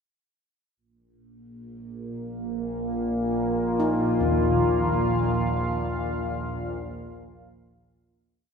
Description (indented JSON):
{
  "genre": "dark ambient drone",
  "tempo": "free time",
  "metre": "none",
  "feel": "none",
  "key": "unclear",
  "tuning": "A4 = 440 Hz",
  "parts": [
    { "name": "deep dark ambient pad", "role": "sustained chords", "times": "1.9-8.4 s", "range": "Bb3 to F5", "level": "-26 LUFS", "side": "left 1 dB", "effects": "chorus, built-in reverb" },
    { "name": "overtone-sweeping drone", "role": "drone", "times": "2.0-8.5 s", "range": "Bb1 to Bb2", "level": "-30 LUFS", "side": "equal", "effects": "chorus, built-in reverb, phaser" },
    { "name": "gamelan-type bossed gongs", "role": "arpeggios", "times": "3.8-8.5 s", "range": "Eb2 to Eb4", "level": "-29 LUFS", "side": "equal", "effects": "ping-pong delay" }
  ],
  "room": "wet cathedral reverb, RT60 6.0 s",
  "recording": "none",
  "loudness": "-23 LUFS",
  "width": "side -6 dB against mid",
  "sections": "0.8-8.4 A section",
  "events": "fade-in on synth drone 0.8-8.4; fade-in on kettle gongs 0.8-8.4; fade-out 4.6-8.4",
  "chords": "0.8 Bb5"
}